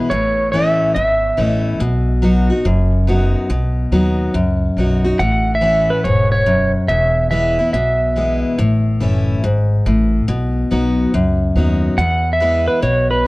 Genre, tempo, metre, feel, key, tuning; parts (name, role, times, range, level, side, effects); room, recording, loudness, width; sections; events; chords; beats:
honky-tonk and classic country; 142 BPM; 4/4; swing 65% on 8ths; A4 = 438 Hz
picked steel-string acoustic guitar; accompaniment; 0.0-13.3 s; E2 to F#4; -17 LUFS; left 1 dB
pedal steel guitar; melody; 0.1-1.6, 5.2-8.4, 12.0-13.3 s; B4 to F#5; -16 LUFS; right 1 dB; slapback echo
upright bass; bass; 0.1-13.3 s; E1 to E2; -19 LUFS; equal
light reverb; worn, warbling old tape, cassette tape, warbly pitch drift; -14 LUFS; side -21 dB against mid
0.0-13.3 A section
0.1 A; 1.8 B; 5.2 A; 6.9 E; 8.6 A; 10.3 B; 12.0 E
| 0.11 0.53 0.96 1.38 | 1.80 2.23 2.65 3.08 | 3.50 3.92 4.35 4.77 | 5.20 5.62 6.04 6.47 | 6.89 7.32 7.74 8.16 | 8.59 9.01 9.44 9.86 | 10.28 10.71 11.13 11.56 | 11.98 12.40 12.83 13.25